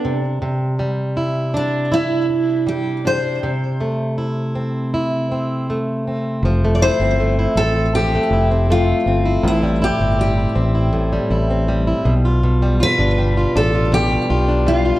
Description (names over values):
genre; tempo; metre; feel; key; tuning
acoustic pop; 80 BPM; 4/4; straight; C major; A4 = 440 Hz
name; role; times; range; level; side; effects
picked steel-string acoustic guitar; melody; 0.0-15.0 s; D4 to D5; -20 LUFS; equal; digital delay
fingerpicked plugged-in steel-string acoustic guitar; accompaniment; 0.0-15.0 s; A2 to A4; -19 LUFS; equal; none
fingered electric bass; bass; 6.4-14.9 s; F1 to B1; -18 LUFS; equal; none
room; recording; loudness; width
moderate recital hall reverb, RT60 1.4 s; worn, warbling old tape, cassette tape, warbly pitch drift; -15 LUFS; side -16 dB against mid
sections
0.0-6.4 A section; 6.4-15.0 B section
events
none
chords
0.0 Cadd9; 3.4 C6; 6.4 Fmaj7; 9.4 Am7; 12.1 G7